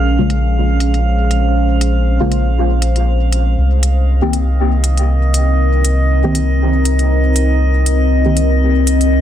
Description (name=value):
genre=dub techno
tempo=119 BPM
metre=4/4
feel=swing 55% on 16ths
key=C phrygian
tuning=A4 = 442 Hz
part: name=deep dark ambient pad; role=sustained chords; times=0.0-9.2 s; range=C4 to C5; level=-19 LUFS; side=left 2 dB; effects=chorus, built-in reverb
part: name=soft dub sub bass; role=bass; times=0.0-9.2 s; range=Bb1 to C2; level=-13 LUFS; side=equal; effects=tube saturation
part: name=drifting glass-harmonics texture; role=texture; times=0.0-9.2 s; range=Eb5 to F5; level=-23 LUFS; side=right 4 dB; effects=chorus, built-in reverb
part: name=deep mellow chord stab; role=stabs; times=0.2-8.4 s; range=Db3 to G4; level=-21 LUFS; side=left 1 dB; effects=chorus, phaser, dub echo
part: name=electronic hi-hat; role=drums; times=0.3-9.1 s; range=none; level=-22 LUFS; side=equal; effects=low-pass filter on hats, small room ambience
room=little or no reverb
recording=dense, heavily limited modern master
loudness=-12 LUFS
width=side -10 dB against mid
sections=0.0-9.2 A section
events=filter sweep on synth stab 0.0-9.2; filter sweep on ambient pad 0.0-9.2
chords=0.0 Bbm7; 3.6 Cm7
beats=0.05 0.55 1.06 | 1.56 2.06 2.57 3.07 | 3.58 4.08 4.59 5.09 | 5.59 6.10 6.60 7.11 | 7.61 8.12 8.62 9.12